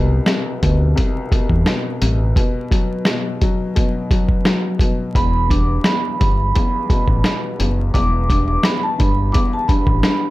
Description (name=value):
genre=hip hop, boom-bap hip-hop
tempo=86 BPM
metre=4/4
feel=swing 55% on 16ths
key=E minor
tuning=A4 = 439 Hz
part: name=dark upright piano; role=accompaniment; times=0.0-10.3 s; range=C2 to G3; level=-22 LUFS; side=left 2 dB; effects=cassette tape, high-pass filter, low-pass filter, plate reverb
part: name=deep dub fingered electric bass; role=bass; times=0.0-10.0 s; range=E1 to E2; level=-18 LUFS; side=equal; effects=none
part: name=lo-fi sampler-style drum kit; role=drums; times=0.3-10.2 s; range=hi-hat, kick drum, rim click, snare drum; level=-18 LUFS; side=equal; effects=none
part: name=vibraphone with medium hard mallets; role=melody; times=5.2-10.3 s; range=A5 to D6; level=-22 LUFS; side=right 2 dB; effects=high-pass filter, low-pass filter, plate reverb
room=light reverb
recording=vinyl crackle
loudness=-15 LUFS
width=side -18 dB against mid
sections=0.0-10.3 A section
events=none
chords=0.0 Cmaj7(no3); 2.4 B5; 5.2 Em